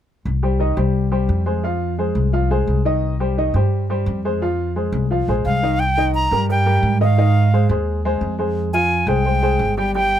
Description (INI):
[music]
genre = latin, salsa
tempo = 173 BPM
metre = 4/4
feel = straight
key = C minor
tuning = A4 = 441 Hz
[part]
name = upright bass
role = bass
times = 0.3-10.2 s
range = G1 to Ab2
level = -19 LUFS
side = equal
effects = none
[part]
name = warm upright piano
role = accompaniment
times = 0.4-10.2 s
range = Eb3 to G5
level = -21 LUFS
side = left 1 dB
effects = none
[part]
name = breathy bright silver concert flute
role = melody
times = 5.5-10.2 s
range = F5 to Bb5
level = -20 LUFS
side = right 1 dB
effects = none
[sound]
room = light reverb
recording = close, detailed microphones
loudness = -16 LUFS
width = side -10 dB against mid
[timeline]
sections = 0.3-5.8 A section; 5.8-10.2 B section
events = none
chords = 0.3 Cm; 1.6 Fm; 3.0 Cm; 4.4 Fm; 5.8 Cm7; 7.2 Ab6; 8.6 Fmadd9